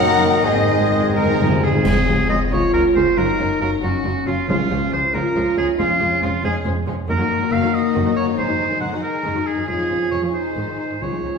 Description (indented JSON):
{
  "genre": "classical, dramatic, fast romantic movement for symphony orchestra",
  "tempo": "92 BPM (dotted quarters)",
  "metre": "6/8",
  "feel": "straight",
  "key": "Db major",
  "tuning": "A4 = 438 Hz",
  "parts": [
    { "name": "dark symphonic violin section", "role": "melody", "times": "0.0-11.4 s", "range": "F4 to Gb5", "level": "-28 LUFS", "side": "left 3 dB", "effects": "none" },
    { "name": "clear oboe", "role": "second line", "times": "0.0-11.4 s", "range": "F4 to Gb5", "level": "-23 LUFS", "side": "right 1 dB", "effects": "none" },
    { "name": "mellow silver concert flute", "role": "second line", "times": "0.0-1.1 s", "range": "Eb5 to Gb5", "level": "-27 LUFS", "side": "left 1 dB", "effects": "none" },
    { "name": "warm clarinet", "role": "second line", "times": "0.0-1.6 s", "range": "Bb4 to C5", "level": "-30 LUFS", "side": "left 4 dB", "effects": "none" },
    { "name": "warm symphonic violin section", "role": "second line", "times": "0.0-11.4 s", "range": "Db4 to Bb4", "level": "-31 LUFS", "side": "left 3 dB", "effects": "none" },
    { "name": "warm bassoon", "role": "accompaniment", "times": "0.0-1.6 s", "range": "Eb3", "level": "-25 LUFS", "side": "right 3 dB", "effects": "none" },
    { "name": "warm symphonic viola section", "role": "accompaniment", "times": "0.0-11.4 s", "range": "Db3 to Ab4", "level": "-27 LUFS", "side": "equal", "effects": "none" },
    { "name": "mellow French horn section", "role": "sustained chords", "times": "0.0-11.4 s", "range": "Bb3 to F4", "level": "-22 LUFS", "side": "left 2 dB", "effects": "none" },
    { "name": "warm trombone section", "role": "sustained chords", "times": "0.0-1.6 s", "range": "Eb3 to Ab3", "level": "-27 LUFS", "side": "right 4 dB", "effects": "none" },
    { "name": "warm trumpet", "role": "stabs", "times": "0.0-1.6 s", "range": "Ab4 to Bb4", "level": "-24 LUFS", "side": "left 1 dB", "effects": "none" },
    { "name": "dark symphonic double bass section", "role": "bass", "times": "0.0-11.3 s", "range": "F1 to Db2", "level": "-28 LUFS", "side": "right 2 dB", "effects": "none" },
    { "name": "warm symphonic cello section", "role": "bass", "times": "0.0-11.4 s", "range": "Db2 to Db3", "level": "-29 LUFS", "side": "right 1 dB", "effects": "none" },
    { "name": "timpani", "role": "percussion", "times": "0.4-1.8, 4.5-5.1, 11.0-11.4 s", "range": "Ab2 to Db3", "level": "-23 LUFS", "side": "left 1 dB", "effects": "none" },
    { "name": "clash cymbals and concert bass drum", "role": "percussion", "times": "1.9-2.7 s", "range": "none", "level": "-28 LUFS", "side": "equal", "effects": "none" }
  ],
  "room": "wet recital hall reverb, RT60 1.4 s",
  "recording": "heard from further back in the room",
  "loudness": "-16 LUFS",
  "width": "side -5 dB against mid",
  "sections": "0.0-1.9 A section; 1.9-11.4 B section",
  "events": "timpani fill 0.4-1.9; band accent 1.9-2.3",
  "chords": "0.4 Ab; 1.9 Db; 3.2 Gbmaj7; 4.5 Db; 5.8 Db/F; 7.1 Ebm/Gb; 8.4 Ab7/Gb; 9.7 Db/F; 10.3 Ab"
}